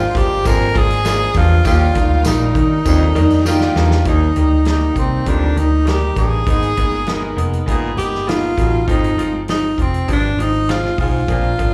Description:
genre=uptempo 1960s-style soul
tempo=100 BPM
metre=4/4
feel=straight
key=Eb major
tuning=A4 = 440 Hz
part: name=warm tenor saxophone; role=melody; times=0.0-11.7 s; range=C4 to Bb4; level=-21 LUFS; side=equal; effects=none
part: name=warm horn section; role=second line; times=0.0-8.5 s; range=Eb3 to C5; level=-31 LUFS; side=equal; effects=slapback echo
part: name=warm studio string section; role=second line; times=0.0-3.9 s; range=Eb4 to Ab5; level=-31 LUFS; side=equal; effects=none
part: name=bright upright piano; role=accompaniment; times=0.0-11.7 s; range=Eb3 to F4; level=-25 LUFS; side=equal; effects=slapback echo
part: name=vintage muted fingered electric bass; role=bass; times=0.0-11.7 s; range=F1 to Eb3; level=-20 LUFS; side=equal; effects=none
part: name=congas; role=percussion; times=0.0-11.6 s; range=none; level=-37 LUFS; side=equal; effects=none
part: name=natural country drum kit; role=drums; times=0.1-11.7 s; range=hi-hat, kick drum, snare drum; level=-23 LUFS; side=equal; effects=none
part: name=raspy baritone saxophone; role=riff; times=0.5-11.5 s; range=Eb2 to Cb3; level=-27 LUFS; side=equal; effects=none
part: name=tambourine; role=percussion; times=0.5-3.6 s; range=none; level=-34 LUFS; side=equal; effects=none
room=little or no reverb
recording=live gig heard through the venue's PA, club reverb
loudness=-16 LUFS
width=mono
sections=0.0-4.1 A section; 4.1-11.7 B section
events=drum fill 3.5-4.1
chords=0.0 Bb7; 1.7 Ebmaj7; 4.1 Eb; 6.5 Abmadd9; 8.9 Fm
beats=0.45 1.05 | 1.65 2.25 2.86 3.46 | 4.06 4.66 5.26 5.87 | 6.47 7.07 7.67 8.28 | 8.88 9.48 10.08 10.68 | 11.29

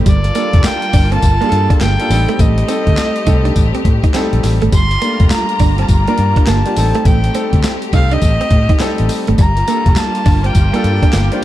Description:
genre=R&B, new jack swing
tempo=103 BPM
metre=4/4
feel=swing 64% on 16ths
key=G minor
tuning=A4 = 440 Hz
part: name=bright concert grand piano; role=accompaniment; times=0.0-11.4 s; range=G3 to C5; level=-21 LUFS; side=left 2 dB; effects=none
part: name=warm studio string section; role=sustained chords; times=0.0-11.4 s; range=G3 to Bb5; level=-24 LUFS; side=equal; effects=none
part: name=direct-recorded clean electric guitar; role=riff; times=0.0-11.3 s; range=G3 to Eb4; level=-22 LUFS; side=right 6 dB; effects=wide subtle chorus
part: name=vintage muted fingered electric bass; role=bass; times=0.0-11.3 s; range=F1 to A2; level=-15 LUFS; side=equal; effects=none
part: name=warm erhu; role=melody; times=0.1-11.4 s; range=D5 to C6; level=-20 LUFS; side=equal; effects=ping-pong delay
part: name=boom bap sampler-style drum kit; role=drums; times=0.1-11.4 s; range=handclaps, hi-hat, kick drum, snare drum, tambourine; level=-14 LUFS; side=equal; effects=none
room=little or no reverb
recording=dark, warm production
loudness=-11 LUFS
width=side -14 dB against mid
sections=0.0-11.4 A section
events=none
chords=0.1 Gm9; 2.1 Am7b5; 4.7 Gm9; 6.8 Am7b5; 9.4 Gm9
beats=| 0.06 0.65 1.23 1.81 | 2.40 2.98 3.56 4.14 | 4.72 5.31 5.89 6.47 | 7.05 7.64 8.22 8.80 | 9.38 9.97 10.55 11.13

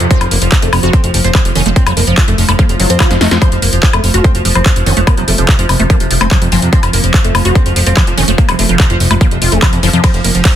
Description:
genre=psychedelic trance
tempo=145 BPM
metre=4/4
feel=straight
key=F major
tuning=A4 = 439 Hz
part: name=oud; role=melody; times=0.0-10.5 s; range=C3 to Eb4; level=-18 LUFS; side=equal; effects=phaser, vintage 12-bit sampler grit, sidechain pumping, ping-pong delay
part: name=overtone-sweeping drone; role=sustained chords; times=0.0-10.6 s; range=F3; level=-20 LUFS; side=right 3 dB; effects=chorus, built-in reverb, sidechain pumping
part: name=fat analog bass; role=bass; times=0.0-10.4 s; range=F1 to F2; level=-14 LUFS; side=equal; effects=none
part: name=techno drum kit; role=drums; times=0.0-10.5 s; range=handclaps, hi-hat, ride cymbal, snare drum, woodblock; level=-15 LUFS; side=left 1 dB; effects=overdrive
part: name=liquid acid bass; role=riff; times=0.1-10.1 s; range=Eb3 to Gb4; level=-18 LUFS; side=moving between left 6 dB and right 8 dB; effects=chorus, auto-pan, sidechain pumping, dub echo
part: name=electronic kick drum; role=drums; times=0.1-10.5 s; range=none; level=-11 LUFS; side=equal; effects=overdrive
part: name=swell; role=sound effects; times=2.7-3.4 s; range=none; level=-22 LUFS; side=equal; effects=none
room=little or no reverb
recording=dense, heavily limited modern master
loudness=-8 LUFS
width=side -11 dB against mid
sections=0.0-10.6 A section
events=swell 2.7-3.4; drum fill 3.1-3.4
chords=0.0 F5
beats=| 0.11 0.52 0.93 1.35 | 1.76 2.17 2.59 3.00 | 3.42 3.83 4.24 4.66 | 5.07 5.49 5.90 6.31 | 6.73 7.14 7.55 7.97 | 8.38 8.80 9.21 9.62 | 10.04 10.45

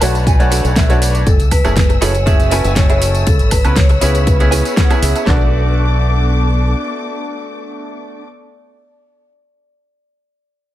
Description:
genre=nu-disco, nu disco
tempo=120 BPM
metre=4/4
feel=straight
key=B dorian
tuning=A4 = 438 Hz
part: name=bright concert grand piano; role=accompaniment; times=0.0-8.3 s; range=A3 to G#5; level=-22 LUFS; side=right 2 dB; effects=tape echo
part: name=dark studio string section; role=sustained chords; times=0.0-8.2 s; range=A3 to E6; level=-25 LUFS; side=left 3 dB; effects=sidechain pumping
part: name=direct-recorded clean electric guitar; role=riff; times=0.0-8.3 s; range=C#4 to A5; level=-24 LUFS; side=right 2 dB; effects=ensemble chorus, tape echo
part: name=fingered electric bass with an envelope filter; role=bass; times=0.0-6.7 s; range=F#1 to C#2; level=-15 LUFS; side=equal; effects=none
part: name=pop drum kit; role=drums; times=0.0-5.3 s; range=hi-hat, snare drum, tambourine, woodblock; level=-21 LUFS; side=right 1 dB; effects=tape echo
part: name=pop drum kit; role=drums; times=0.3-5.4 s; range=handclaps, kick drum, snare drum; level=-13 LUFS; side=equal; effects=none
part: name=vibraphone with medium hard mallets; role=melody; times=1.3-8.2 s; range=A4 to E5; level=-23 LUFS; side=left 2 dB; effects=dub echo
room=little or no reverb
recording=echo-heavy mix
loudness=-11 LUFS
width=side -14 dB against mid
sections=0.0-5.3 A section; 5.3-9.3 B section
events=drop 0.0-5.3; clean electric guitar fill 0.0-1.3, 4.3-5.3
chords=0.0 Bm7; 1.3 F#m9; 3.3 C#m7; 5.3 Bm7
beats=0.27 0.77 | 1.27 1.77 2.27 2.77 | 3.27 3.77 4.27 4.77 | 5.27 5.77 6.27 6.77 | 7.27 7.77

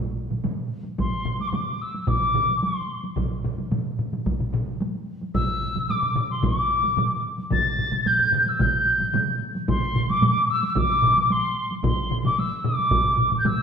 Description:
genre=japanese traditional, taiko drum ensemble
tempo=111 BPM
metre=4/4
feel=straight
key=D suspended pentatonic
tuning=A4 = 440 Hz
part: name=taiko ensemble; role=percussion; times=0.3-13.6 s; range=none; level=-30 LUFS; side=equal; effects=none
part: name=taiko ensemble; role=percussion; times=0.3-13.6 s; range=none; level=-29 LUFS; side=left 3 dB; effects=none
part: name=taiko ensemble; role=percussion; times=0.3-13.6 s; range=none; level=-31 LUFS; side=right 5 dB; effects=none
part: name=mellow wooden piccolo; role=melody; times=1.0-13.6 s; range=C6 to A6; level=-22 LUFS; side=left 1 dB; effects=none
part: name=solo taiko drums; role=percussion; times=1.0-13.0 s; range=none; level=-29 LUFS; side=right 1 dB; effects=none
room=wet recital hall reverb, RT60 1.6 s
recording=minimal, uncompressed stereo recording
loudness=-21 LUFS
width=side -6 dB against mid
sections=0.0-13.6 A section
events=none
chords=none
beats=0.44 | 0.99 1.54 2.08 2.63 | 3.17 3.72 4.26 4.81 | 5.35 5.89 6.44 6.98 | 7.52 8.06 8.60 9.14 | 9.69 10.22 10.76 11.30 | 11.84 12.38 12.92 13.46

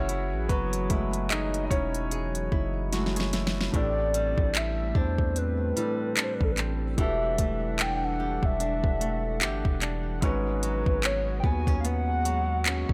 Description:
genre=contemporary R&B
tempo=74 BPM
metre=4/4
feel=swing 58% on 16ths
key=unclear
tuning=A4 = 440 Hz
part: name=warm grand piano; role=accompaniment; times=0.0-12.9 s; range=A2 to F#5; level=-37 LUFS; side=equal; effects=none
part: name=chorused pulse-width pad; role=sustained chords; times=0.0-12.9 s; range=E3 to F#5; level=-39 LUFS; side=equal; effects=none
part: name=flamenco guitar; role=arpeggios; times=0.0-12.9 s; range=G#2 to G#4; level=-38 LUFS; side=equal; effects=digital delay
part: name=long sustained 808-style bass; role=bass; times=0.0-12.9 s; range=E1 to E2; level=-33 LUFS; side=equal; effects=none
part: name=smooth R&B drum kit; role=drums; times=0.1-12.9 s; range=handclaps, hi-hat, kick drum, snare drum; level=-30 LUFS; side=equal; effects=none
part: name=hollow clarinet-like synth lead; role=melody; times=3.8-12.9 s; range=A4 to G#5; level=-33 LUFS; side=equal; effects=chorus, phaser, digital delay
room=little or no reverb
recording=none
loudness=-27 LUFS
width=mono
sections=0.0-3.7 A section; 3.7-12.9 B section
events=grand piano solo 0.0-3.7; drum fill 2.9-3.7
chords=0.0 F#m9; 3.7 Am11; 7.0 Em11; 10.2 G#m7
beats=| 0.49 1.30 2.12 2.93 | 3.74 4.55 5.36 6.17 | 6.98 7.79 8.60 9.41 | 10.22 11.03 11.85 12.66

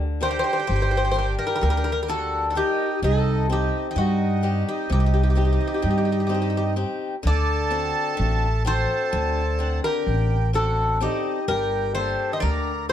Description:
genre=greek folk, Greek bouzouki band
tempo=128 BPM (eighths)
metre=9/8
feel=straight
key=G harmonic minor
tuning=A4 = 440 Hz
part: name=picked swing-style acoustic guitar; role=accompaniment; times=0.0-12.9 s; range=C3 to F#5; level=-30 LUFS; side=left 5 dB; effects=none
part: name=upright bass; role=bass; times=0.0-12.9 s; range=G1 to G2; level=-23 LUFS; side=equal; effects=none
part: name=Greek bouzouki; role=melody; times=0.2-12.9 s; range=F#4 to Eb5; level=-26 LUFS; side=left 2 dB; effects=slapback echo
part: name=accordion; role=second line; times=0.2-12.9 s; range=Eb4 to C5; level=-28 LUFS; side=right 5 dB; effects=none
room=light reverb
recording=dark, warm production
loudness=-20 LUFS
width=side -10 dB against mid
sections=0.0-12.9 A section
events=none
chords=0.0 Gm; 3.0 Cm; 7.2 D7; 11.5 Gm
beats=0.21 0.68 1.15 1.62 2.09 2.56 | 3.02 3.49 3.96 4.43 4.90 5.37 5.84 6.31 6.78 | 7.25 7.72 8.19 8.66 9.13 9.60 10.07 10.54 11.01 | 11.48 11.95 12.42 12.89

